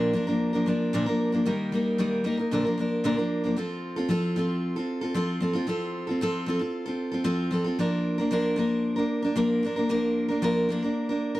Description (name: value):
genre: pop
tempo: 114 BPM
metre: 4/4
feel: straight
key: unclear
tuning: A4 = 440 Hz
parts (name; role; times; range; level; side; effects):
- picked steel-string acoustic guitar; solo; 0.0-11.4 s; Bb2 to Bb4; -24 LUFS; equal; none
room: small room ambience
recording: dry, close 1970s-style studio recording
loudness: -24 LUFS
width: side -16 dB against mid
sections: 0.0-3.6 A section; 3.6-11.4 B section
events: none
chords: 0.0 Bb; 1.5 Eb; 2.5 Bb; 3.6 F; 7.8 Bb/F